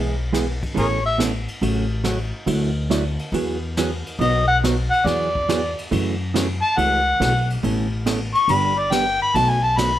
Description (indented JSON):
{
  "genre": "country, western swing",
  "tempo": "140 BPM",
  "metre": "4/4",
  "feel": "swing 67% on 8ths",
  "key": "A major",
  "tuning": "A4 = 437 Hz",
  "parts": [
    { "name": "hollow-body jazz guitar", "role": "accompaniment", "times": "0.0-9.9 s", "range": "B2 to A4", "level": "-23 LUFS", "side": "right 4 dB", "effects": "none" },
    { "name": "upright bass", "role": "bass", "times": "0.0-10.0 s", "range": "G1 to F#2", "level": "-24 LUFS", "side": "left 1 dB", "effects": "none" },
    { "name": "jazz brush drum kit", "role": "drums", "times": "0.3-9.9 s", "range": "hi-hat, kick drum, ride cymbal, snare drum", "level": "-30 LUFS", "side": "left 1 dB", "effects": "none" },
    { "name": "overdriven harmonica", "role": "melody", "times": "0.8-1.2, 4.2-10.0 s", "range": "G#4 to C#6", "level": "-19 LUFS", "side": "left 2 dB", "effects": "none" }
  ],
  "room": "light reverb",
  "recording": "none",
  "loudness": "-18 LUFS",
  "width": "side -12 dB against mid",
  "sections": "0.0-10.0 A section",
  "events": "harmonica solo 0.0-10.0",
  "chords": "0.0 E; 0.8 Aadd9; 1.6 F#m/A; 2.5 Dadd9; 3.3 Eadd9; 4.2 B; 5.1 Eadd9; 5.9 F#m7; 7.6 Aadd9; 8.5 G; 9.3 B7",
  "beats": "0.33 | 0.76 1.19 1.62 2.05 | 2.48 2.91 3.34 3.77 | 4.19 4.62 5.05 5.48 | 5.91 6.34 6.77 7.20 | 7.63 8.06 8.49 8.92 | 9.35 9.78"
}